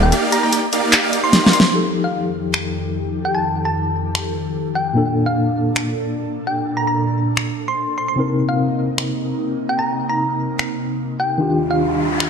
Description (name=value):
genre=future bass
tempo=149 BPM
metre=4/4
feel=half-time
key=unclear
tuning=A4 = 443 Hz
part: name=thumb-piano-like synth pluck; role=melody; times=0.0-11.9 s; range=F5 to C6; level=-22 LUFS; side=equal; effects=chorus, digital delay
part: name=supersaw chords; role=riff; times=0.1-1.6 s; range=Bb3 to G5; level=-19 LUFS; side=right 2 dB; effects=low-pass filter, tape echo
part: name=big-room dance drum kit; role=drums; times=0.1-12.3 s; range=finger snaps, handclaps, hi-hat, snare drum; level=-17 LUFS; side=equal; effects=none
part: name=tine electric piano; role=accompaniment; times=1.7-12.3 s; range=Bb2 to Bb4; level=-22 LUFS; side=left 2 dB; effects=medium tremolo
part: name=airy breathy pad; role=sustained chords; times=1.7-12.3 s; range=Eb2 to A4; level=-24 LUFS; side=right 1 dB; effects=chorus, phaser
part: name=riser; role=sound effects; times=11.6-12.3 s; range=none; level=-25 LUFS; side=equal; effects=none
room=moderate lush hall reverb, RT60 1.9 s, digital ambience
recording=none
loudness=-17 LUFS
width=side -6 dB against mid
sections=0.0-1.7 A section; 1.7-12.3 B section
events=drop 0.0-1.7; drum fill 1.3-1.7; band accent 1.6; filter sweep on analog synth pad 1.7-12.3; riser 11.6-12.3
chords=0.0 Ebmaj9; 1.7 F9; 5.0 Bbmaj7; 8.2 Cm7; 11.4 Ebmaj9